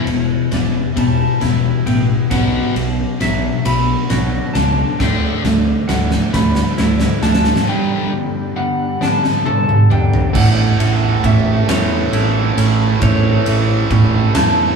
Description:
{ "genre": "post-rock", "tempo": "45 BPM (dotted quarters)", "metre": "6/8", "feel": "straight", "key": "unclear", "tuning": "A4 = 440 Hz", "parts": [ { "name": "electric slide guitar", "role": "melody", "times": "0.0-14.8 s", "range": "C#5 to B5", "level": "-23 LUFS", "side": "equal", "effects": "none" }, { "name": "ethereal airy pad", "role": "sustained chords", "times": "0.0-14.8 s", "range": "B3 to E5", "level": "-29 LUFS", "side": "left 2 dB", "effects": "ensemble chorus, built-in reverb" }, { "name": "twangy electric guitar", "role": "arpeggios", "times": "0.0-14.8 s", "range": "E2 to A4", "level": "-26 LUFS", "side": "right 2 dB", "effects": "none" }, { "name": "sludgy distorted guitar", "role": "riff", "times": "0.0-10.3 s", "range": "E2 to D4", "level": "-18 LUFS", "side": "left 4 dB", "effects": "overdrive" }, { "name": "growling fingered electric bass", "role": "bass", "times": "0.1-14.7 s", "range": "E1 to E2", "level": "-18 LUFS", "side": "right 2 dB", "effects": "overdrive" }, { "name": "oversized low-tuned drum kit", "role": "drums", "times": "0.1-14.6 s", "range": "crash cymbal, kick drum, ride cymbal, snare drum, toms", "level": "-18 LUFS", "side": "equal", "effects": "none" }, { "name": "tight distorted guitar", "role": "riff", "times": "10.3-14.8 s", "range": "A2 to A3", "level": "-19 LUFS", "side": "right 7 dB", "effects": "distortion" } ], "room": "moderate studio ambience, RT60 0.4 s", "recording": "band playing live in one room, small room reverb", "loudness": "-13 LUFS", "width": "side -5 dB against mid", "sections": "0.0-10.3 A section; 10.3-14.8 B section", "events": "build-up 0.0-10.3; drum fill 0.0-7.7, 9.0-10.3", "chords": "0.0 Em; 2.3 Bm7; 5.0 Dsus2; 7.7 Gadd9; 10.3 A", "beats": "0.97 | 2.31 3.65 | 5.00 6.34 | 7.67 9.01 | 10.35 11.69 | 13.02 14.35" }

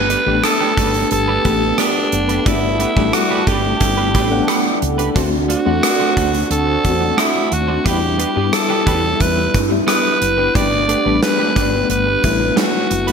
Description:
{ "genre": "1980s-style pop", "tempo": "89 BPM", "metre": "4/4", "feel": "straight", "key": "G major", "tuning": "A4 = 440 Hz", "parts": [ { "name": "raspy alto saxophone", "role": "melody", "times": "0.0-13.1 s", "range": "D4 to D5", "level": "-19 LUFS", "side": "right 1 dB", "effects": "tape echo" }, { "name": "FM electric piano with tremolo", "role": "accompaniment", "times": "0.0-13.1 s", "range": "G3 to F#5", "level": "-22 LUFS", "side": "left 8 dB", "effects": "none" }, { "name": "sweeping resonant pad", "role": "sustained chords", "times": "0.0-13.1 s", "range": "G3 to A4", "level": "-22 LUFS", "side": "right 3 dB", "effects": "chorus, phaser" }, { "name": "woody fretless electric bass", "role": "bass", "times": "0.0-13.1 s", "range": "F#1 to G2", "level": "-22 LUFS", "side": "equal", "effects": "none" }, { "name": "twelve-string electric guitar", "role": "riff", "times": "0.1-13.1 s", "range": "A3 to C5", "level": "-26 LUFS", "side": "right 7 dB", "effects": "analog chorus, tape echo" }, { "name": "gated 80s drum kit", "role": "drums", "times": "0.1-13.1 s", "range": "hi-hat, kick drum, rim click, snare drum", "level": "-19 LUFS", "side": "right 1 dB", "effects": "gated reverb" } ], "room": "moderate lush hall reverb, RT60 2.0 s, studio reverb", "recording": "none", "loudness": "-14 LUFS", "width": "side -6 dB against mid", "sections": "0.0-13.1 A section", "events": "none", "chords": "0.0 Gadd9; 5.2 D7; 7.9 Em7; 10.6 Gadd9", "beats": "0.44 1.11 1.79 | 2.46 3.14 3.81 4.48 | 5.16 5.83 6.51 7.18 | 7.86 8.53 9.20 9.88 | 10.55 11.23 11.90 12.57" }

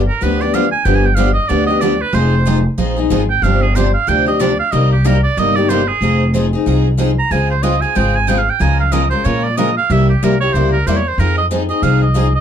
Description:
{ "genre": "acoustic string swing (jazz manouche)", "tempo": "186 BPM", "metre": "4/4", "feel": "swing 59% on 8ths", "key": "C minor, F minor from 6.0 s", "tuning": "A4 = 439 Hz", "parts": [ { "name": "upright bass", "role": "bass", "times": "0.0-12.3 s", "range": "F1 to Bb2", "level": "-16 LUFS", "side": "equal", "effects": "none" }, { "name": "clear oboe", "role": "second line", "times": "0.1-12.4 s", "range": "G4 to Bb5", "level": "-18 LUFS", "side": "right 5 dB", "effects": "none" }, { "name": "picked steel-string acoustic guitar", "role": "accompaniment", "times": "0.2-12.3 s", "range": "C3 to Bb4", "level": "-19 LUFS", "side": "left 6 dB", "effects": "none" }, { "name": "picked steel-string acoustic guitar", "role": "accompaniment", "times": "0.2-12.3 s", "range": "C3 to C5", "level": "-22 LUFS", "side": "right 6 dB", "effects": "none" } ], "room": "moderate club reverb, RT60 0.5 s", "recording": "dark, warm production", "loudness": "-12 LUFS", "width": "side -8 dB against mid", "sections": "0.0-6.0 A section; 6.0-12.4 A section", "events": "oboe solo 0.0-12.4", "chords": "0.0 G7; 2.1 Fm7; 3.4 G7sus4; 4.7 Cm7; 6.0 Fm7; 7.3 Dbmaj7; 8.6 Bbm7/Db; 9.9 C7b9; 11.2 Fm7", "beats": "0.21 0.54 | 0.86 1.18 1.50 1.82 | 2.15 2.47 2.79 3.12 | 3.44 3.76 4.08 4.41 | 4.73 5.05 5.38 5.70 | 6.03 6.35 6.67 7.00 | 7.32 7.64 7.97 8.29 | 8.62 8.94 9.26 9.58 | 9.90 10.23 10.55 10.87 | 11.19 11.51 11.84 12.16" }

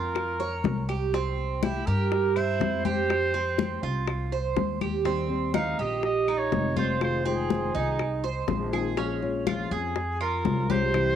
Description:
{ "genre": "latin, Cuban son and guajira", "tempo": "122 BPM", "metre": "4/4", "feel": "straight", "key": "F minor", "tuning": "A4 = 440 Hz", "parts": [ { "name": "warm trumpet", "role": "melody", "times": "0.0-11.2 s", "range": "F4 to F5", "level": "-30 LUFS", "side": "equal", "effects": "cassette tape" }, { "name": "Cuban tres", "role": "arpeggios", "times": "0.0-11.2 s", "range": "C4 to Db5", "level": "-29 LUFS", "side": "right 8 dB", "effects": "cassette tape" }, { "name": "upright bass", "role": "bass", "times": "0.0-11.2 s", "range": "F1 to G2", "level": "-31 LUFS", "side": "equal", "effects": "none" }, { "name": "bongos", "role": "percussion", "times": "0.2-11.2 s", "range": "none", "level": "-31 LUFS", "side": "left 11 dB", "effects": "none" }, { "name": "claves", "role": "percussion", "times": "0.2-11.2 s", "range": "none", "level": "-40 LUFS", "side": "left 11 dB", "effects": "none" }, { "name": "congas", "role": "percussion", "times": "0.2-11.2 s", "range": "none", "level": "-32 LUFS", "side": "left 9 dB", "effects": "none" }, { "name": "nylon-string guitar", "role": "accompaniment", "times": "5.0-11.2 s", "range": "C3 to F4", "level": "-32 LUFS", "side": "left 7 dB", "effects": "cassette tape" } ], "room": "light reverb, small room ambience", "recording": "home recording on cassette", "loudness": "-24 LUFS", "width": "side -9 dB against mid", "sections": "0.0-11.2 A section", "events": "none", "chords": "0.0 Bbm; 1.1 C; 3.1 Fsus2; 5.1 Eb6; 7.0 Fm7; 9.0 Bbm7", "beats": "0.16 0.65 | 1.14 1.63 2.12 2.61 | 3.10 3.59 4.08 4.57 | 5.05 5.54 6.03 6.52 | 7.01 7.50 8.00 8.49 | 8.98 9.47 9.96 10.45 | 10.94" }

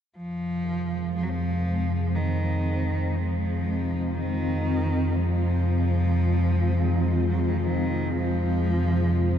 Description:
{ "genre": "dark ambient drone", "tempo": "60 BPM", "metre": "4/4", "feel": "straight", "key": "unclear", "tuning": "A4 = 440 Hz", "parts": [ { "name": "rich cello", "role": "melody", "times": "0.2-9.4 s", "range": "Eb3 to Gb3", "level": "-28 LUFS", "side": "equal", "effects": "ping-pong delay" }, { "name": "granular cloud pad", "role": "sustained chords", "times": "1.2-9.4 s", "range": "Ab3 to F4", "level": "-29 LUFS", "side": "left 1 dB", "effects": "built-in reverb" }, { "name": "analog drone", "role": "drone", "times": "0.4-9.4 s", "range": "F2 to C3", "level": "-25 LUFS", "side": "equal", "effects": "wide subtle chorus" }, { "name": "carillon bells", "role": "arpeggios", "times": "0.6-9.4 s", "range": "Eb3 to Eb4", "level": "-48 LUFS", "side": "left 1 dB", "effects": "none" } ], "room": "wet huge ambient reverb, RT60 8.0 s", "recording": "dark, warm production, nothing above 10.6 kHz", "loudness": "-23 LUFS", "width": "side -9 dB against mid", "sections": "0.2-9.4 A section", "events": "filter sweep on synth drone 0.2-9.4", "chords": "0.2 Fm", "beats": "| 0.18 1.18 2.18 3.18 | 4.18 5.18 6.18 7.18 | 8.18 9.18" }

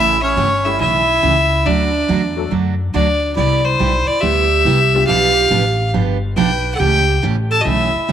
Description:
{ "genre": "country", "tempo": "140 BPM", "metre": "4/4", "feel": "swing 67% on 8ths", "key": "unclear", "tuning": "A4 = 440 Hz", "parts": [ { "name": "bright fiddle", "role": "melody", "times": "0.0-8.1 s", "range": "C5 to A5", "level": "-16 LUFS", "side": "left 3 dB", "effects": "none" }, { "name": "breathy clarinet", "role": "second line", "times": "0.0-8.1 s", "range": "C#4 to B4", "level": "-21 LUFS", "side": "right 8 dB", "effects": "none" }, { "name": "picked steel-string acoustic guitar", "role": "accompaniment", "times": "0.0-8.1 s", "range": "B2 to B4", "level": "-21 LUFS", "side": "right 8 dB", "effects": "none" }, { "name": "upright bass", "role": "bass", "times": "0.0-8.1 s", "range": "G1 to F#2", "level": "-19 LUFS", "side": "left 1 dB", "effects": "none" }, { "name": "honky-tonk upright piano", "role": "accompaniment", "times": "0.6-5.5 s", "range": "F#3 to A4", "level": "-26 LUFS", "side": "left 9 dB", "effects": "none" } ], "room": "moderate spring reverb, RT60 2.3 s", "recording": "1960s-style stereo with parts hard left and right", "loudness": "-13 LUFS", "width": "side -9 dB against mid", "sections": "0.0-8.1 A section", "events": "none", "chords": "0.0 A7; 1.7 D; 3.4 Cmaj7; 5.1 G7; 6.8 A7", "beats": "0.37 0.80 1.23 | 1.65 2.08 2.51 2.94 | 3.37 3.80 4.23 4.66 | 5.09 5.51 5.94 6.37 | 6.80 7.23 7.66 8.09" }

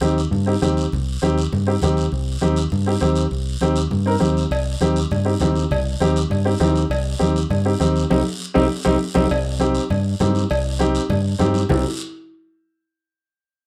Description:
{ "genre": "latin, cumbia", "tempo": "200 BPM", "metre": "4/4", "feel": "straight", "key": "C minor", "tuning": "A4 = 442 Hz", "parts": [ { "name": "dark upright piano", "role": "accompaniment", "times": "0.0-11.8 s", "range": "C4 to Bb4", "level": "-23 LUFS", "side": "equal", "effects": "none" }, { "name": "fingered electric bass", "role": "bass", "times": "0.0-11.8 s", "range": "C2 to G2", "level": "-23 LUFS", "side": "equal", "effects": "none" }, { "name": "congas", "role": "percussion", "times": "0.0-11.8 s", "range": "none", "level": "-28 LUFS", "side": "equal", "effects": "none" }, { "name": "guiro", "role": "percussion", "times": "0.0-11.8 s", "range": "none", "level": "-35 LUFS", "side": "equal", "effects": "none" }, { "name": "cowbell and timbales", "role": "percussion", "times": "4.5-11.8 s", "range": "none", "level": "-30 LUFS", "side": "equal", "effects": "none" } ], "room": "light reverb", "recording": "none", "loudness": "-20 LUFS", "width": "mono", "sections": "0.0-9.3 A section; 9.3-11.7 B section; 11.7-12.9 C section", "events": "band accent 8.1-9.3", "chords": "0.0 Cm", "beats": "0.03 0.32 0.62 | 0.92 1.22 1.52 1.82 | 2.12 2.42 2.72 3.02 | 3.32 3.62 3.92 4.21 | 4.51 4.81 5.11 5.41 | 5.71 6.01 6.31 6.61 | 6.91 7.21 7.51 7.81 | 8.11 8.40 8.70 9.00 | 9.30 9.60 9.90 10.20 | 10.50 10.80 11.10 11.40 | 11.70" }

